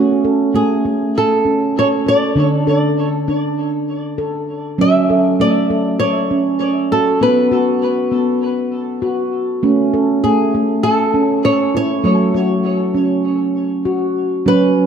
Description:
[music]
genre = world meditative, meditative tuned percussion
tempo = 99 BPM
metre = 4/4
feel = straight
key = F# minor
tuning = A4 = 441 Hz
[part]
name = handpan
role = arpeggios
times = 0.0-14.9 s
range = D3 to A4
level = -15 LUFS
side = right 1 dB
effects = none
[part]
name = flamenco guitar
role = melody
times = 0.6-14.9 s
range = G#4 to E5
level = -18 LUFS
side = equal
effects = wide subtle chorus, diffuse ambient delay
[sound]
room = wet plate reverb, RT60 2.6 s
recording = dreamy mix soaked in reverb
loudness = -13 LUFS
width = side -7 dB against mid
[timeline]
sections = 0.0-14.5 A section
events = none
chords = 0.0 A; 2.4 D5; 4.8 F#m; 7.2 B5; 9.6 A; 12.0 F#m

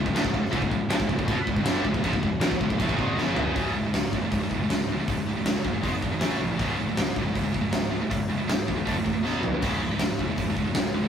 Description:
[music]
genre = heavy metal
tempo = 158 BPM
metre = 4/4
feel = straight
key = C# minor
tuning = A4 = 440 Hz
[part]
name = crunchy overdriven guitar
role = riff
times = 0.0-3.5 s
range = C#2 to G#3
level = -35 LUFS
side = equal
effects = none
[part]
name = scooped high-gain guitar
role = riff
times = 0.0-11.1 s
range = C#2 to B3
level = -28 LUFS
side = right 4 dB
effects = distortion
[part]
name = tight distorted guitar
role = riff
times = 0.0-11.1 s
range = C#2 to B3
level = -32 LUFS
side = left 5 dB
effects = distortion
[part]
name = fuzz picked electric bass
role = bass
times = 0.0-11.0 s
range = C#1 to B#1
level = -33 LUFS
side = equal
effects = overdrive
[part]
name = big rock drum kit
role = drums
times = 0.1-10.8 s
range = crash cymbal, hi-hat, kick drum, snare drum, toms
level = -27 LUFS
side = left 1 dB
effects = none
[sound]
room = moderate stone room reverb, RT60 1.1 s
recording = rough rehearsal-room recording, warm saturation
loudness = -23 LUFS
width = side -8 dB against mid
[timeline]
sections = 0.0-3.6 A section; 3.6-11.1 B section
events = drum fill 3.2-3.6, 9.2-9.6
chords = 0.0 C#m; 3.6 C#5; 5.8 G#5; 6.2 A5; 6.6 C#5; 8.9 D5; 9.2 B5; 9.6 C#5

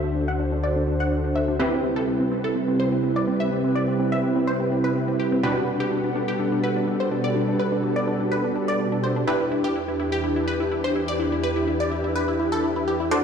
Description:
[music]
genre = progressive house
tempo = 125 BPM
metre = 4/4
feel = straight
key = unclear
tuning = A4 = 441 Hz
[part]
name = airy breathy pad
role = sustained chords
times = 0.0-13.2 s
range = D2 to F#5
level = -27 LUFS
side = equal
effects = chorus
[part]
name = wide unison pluck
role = arpeggios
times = 0.0-13.2 s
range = C4 to F#5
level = -26 LUFS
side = left 1 dB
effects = dub echo
[part]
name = supersaw stab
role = stabs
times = 0.0-13.2 s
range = B2 to C5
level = -24 LUFS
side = right 2 dB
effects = low-pass filter, dub echo
[part]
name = electronic hi-hat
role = drums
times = 13.1-13.2 s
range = none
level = -48 LUFS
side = equal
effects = none
[sound]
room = moderate huge ambient reverb, RT60 8.0 s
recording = played on a big sound system in a bare room, large studio reverb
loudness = -21 LUFS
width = side -7 dB against mid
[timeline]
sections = 0.0-13.1 A section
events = filter sweep on synth pluck 0.0-13.1; filter sweep on analog synth pad 0.0-13.1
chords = 0.0 D7; 1.6 Cmaj7; 5.4 Gmaj7/B; 9.3 Em7

